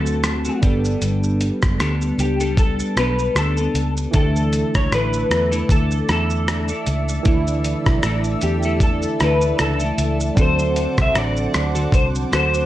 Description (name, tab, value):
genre	indie pop, bedroom pop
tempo	77 BPM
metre	4/4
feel	swing 55% on 16ths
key	D major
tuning	A4 = 440 Hz
part	electric guitar through a small old amp	melody	0.0-12.7 s	G4 to E5	-23 LUFS	left 2 dB	ensemble chorus
part	clean electric guitar	accompaniment	0.0-12.7 s	D3 to A4	-25 LUFS	left 2 dB	analog chorus, vibrato effect
part	warm analog keys	accompaniment	0.0-12.7 s	E3 to A4	-27 LUFS	right 4 dB	chorus
part	vintage muted fingered electric bass	bass	0.0-12.7 s	F#1 to E2	-22 LUFS	equal	none
part	dusty soul sampler-style drum kit	drums	0.1-12.7 s	hi-hat, kick drum, rim click, shaker	-21 LUFS	equal	none
part	phased analog pad	sustained chords	4.1-12.7 s	C5 to E6	-30 LUFS	right 3 dB	phaser, chorus
room	light reverb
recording	cassette tape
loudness	-16 LUFS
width	side -14 dB against mid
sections	0.0-12.7 A section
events	none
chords	0.0 D7; 0.6 Gadd9; 4.1 Dsus2; 10.4 D7